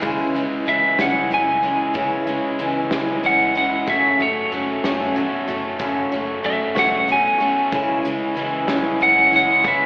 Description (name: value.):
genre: folk rock and heartland rock.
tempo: 62 BPM (dotted quarters).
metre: 6/8.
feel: straight.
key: unclear.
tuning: A4 = 439 Hz.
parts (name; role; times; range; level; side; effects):
picked old ladder-braced acoustic guitar; accompaniment; 0.0-9.9 s; F#2 to F#4; -22 LUFS; equal; slapback echo.
pedal harmonium; sustained chords; 0.0-9.9 s; E4 to C#5; -31 LUFS; equal; none.
crunchy overdriven guitar; riff; 0.0-9.9 s; F#2 to C#4; -26 LUFS; equal; slapback echo.
hollow-body short-scale picked electric bass; bass; 0.0-9.9 s; F#1 to F#2; -36 LUFS; equal; none.
soft brush drum kit; drums; 0.0-9.8 s; hi-hat, kick drum, snare drum; -29 LUFS; equal; none.
lightly driven lead guitar; melody; 0.7-9.9 s; C#5 to G#5; -17 LUFS; equal; slapback echo.
room: light reverb, small room ambience.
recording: live gig heard through the venue's PA, recital hall reverb, AM radio sound.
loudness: -16 LUFS.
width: side -29 dB against mid.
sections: 0.0-9.9 A section.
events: lead electric guitar solo 0.0-9.9.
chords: 0.0 C#m; 3.9 F#m; 7.7 C#m.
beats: | 0.03 0.99 | 1.95 2.91 | 3.88 4.84 | 5.80 6.76 | 7.73 8.69 | 9.65.